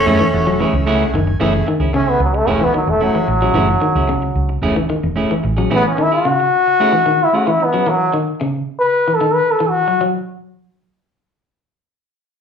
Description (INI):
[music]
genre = afrobeat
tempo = 112 BPM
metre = 4/4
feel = straight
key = F# dorian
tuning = A4 = 436 Hz
[part]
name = raspy tenor saxophone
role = melody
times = 0.0-1.1 s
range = C#4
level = -19 LUFS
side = right 2 dB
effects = slapback echo, tape echo
[part]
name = raspy alto saxophone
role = second line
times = 0.0-1.1 s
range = A3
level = -23 LUFS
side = right 1 dB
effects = slapback echo
[part]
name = hollow-body short-scale fingered electric bass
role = bass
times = 0.0-5.6 s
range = E1 to F#2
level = -19 LUFS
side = right 1 dB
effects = none
[part]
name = combo organ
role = accompaniment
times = 0.1-3.3 s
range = A3 to G#5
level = -25 LUFS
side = left 3 dB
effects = slapback echo
[part]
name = clean electric guitar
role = stabs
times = 0.1-7.9 s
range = A3 to G#4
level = -20 LUFS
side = right 2 dB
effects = slapback echo
[part]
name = electric guitar at the edge of break-up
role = arpeggios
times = 0.2-10.2 s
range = C#3 to F#3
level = -21 LUFS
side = left 2 dB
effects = slapback echo
[part]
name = brilliant trombone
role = melody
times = 2.0-10.0 s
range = F#3 to B4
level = -15 LUFS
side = left 1 dB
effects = slapback echo
[sound]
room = moderate club reverb, RT60 0.7 s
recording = live gig heard through the venue's PA, club reverb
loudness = -13 LUFS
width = side -7 dB against mid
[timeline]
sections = 0.0-1.4 A section; 1.4-10.0 B section; 10.0-12.4 C section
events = transistor combo organ fill 0.3-1.4; trombone solo 1.4-10.0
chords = 0.0 F#m9; 10.0 N.C.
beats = 0.33 0.87 | 1.40 1.94 2.48 3.02 | 3.55 4.09 4.63 5.17 | 5.71 6.25 6.79 7.33 | 7.86 8.40 8.94 9.48 | 10.02